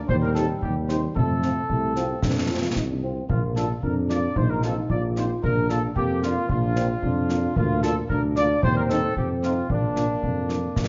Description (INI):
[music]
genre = military-style march for wind band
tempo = 112 BPM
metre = 2/4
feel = straight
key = Bb major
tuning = A4 = 438 Hz
[part]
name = warm euphonium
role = second line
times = 0.0-10.9 s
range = G3 to F4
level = -32 LUFS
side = equal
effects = none
[part]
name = dark trumpet section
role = melody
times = 0.1-10.9 s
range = D4 to D5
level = -30 LUFS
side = equal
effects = none
[part]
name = mellow tuba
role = bass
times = 0.1-10.9 s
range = Bb1 to F2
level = -28 LUFS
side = equal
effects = none
[part]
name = concert bass drum and concert snare drum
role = drums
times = 0.1-10.9 s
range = none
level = -30 LUFS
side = equal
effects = none
[part]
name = mellow French horn section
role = accompaniment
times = 0.4-10.6 s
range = F3 to G4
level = -35 LUFS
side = equal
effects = none
[sound]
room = wet large studio reverb, RT60 1.3 s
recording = dark, warm production, nothing above 7.5 kHz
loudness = -24 LUFS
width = mono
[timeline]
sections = 0.0-10.9 A section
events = none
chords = 0.1 Cm/Eb; 1.2 F; 3.3 Bb; 4.4 F5/Bb; 5.4 Bb; 7.6 Bb/D; 8.6 Cm/Eb; 9.2 F7; 9.7 Bb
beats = | 0.09 0.63 | 1.16 1.70 | 2.23 2.76 | 3.30 3.83 | 4.37 4.90 | 5.43 5.97 | 6.50 7.03 | 7.57 8.10 | 8.63 9.17 | 9.70 10.23 | 10.77